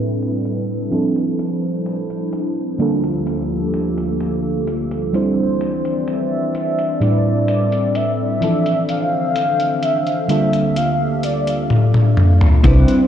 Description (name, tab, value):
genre	vaporwave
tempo	64 BPM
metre	4/4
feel	straight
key	unclear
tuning	A4 = 439 Hz
part	mellow FM electric piano	accompaniment	0.0-13.1 s	A2 to C5	-20 LUFS	right 1 dB	phaser, analog chorus, tape echo
part	warbly tape-like pad	sustained chords	0.0-13.1 s	D2 to E5	-24 LUFS	left 1 dB	chorus, built-in reverb
part	detuned 8-bit digital drum machine	drums	0.2-13.1 s	hi-hat, toms	-17 LUFS	left 1 dB	none
part	warm velvety synth lead	melody	5.1-13.1 s	C4 to F5	-20 LUFS	equal	chorus, tape echo
part	clean electric guitar	riff	12.6-13.0 s	C4 to B4	-21 LUFS	left 4 dB	analog chorus
part	woody fretless electric bass	bass	12.6-12.8 s	C2	-12 LUFS	equal	none
part	kick drum	drums	12.6-12.8 s	none	-16 LUFS	equal	none
room	wet huge ambient reverb, RT60 7.8 s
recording	dreamy mix soaked in reverb, cassette tape, low-pass filter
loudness	-16 LUFS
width	side -9 dB against mid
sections	0.0-12.6 A section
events	filter sweep 0.0-12.6; drum fill 11.7-12.6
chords	0.0 Am11; 0.9 Dm9; 2.8 Gm9/D; 5.1 Cadd9; 7.0 Am11; 8.4 Dm9; 10.3 Gm9/D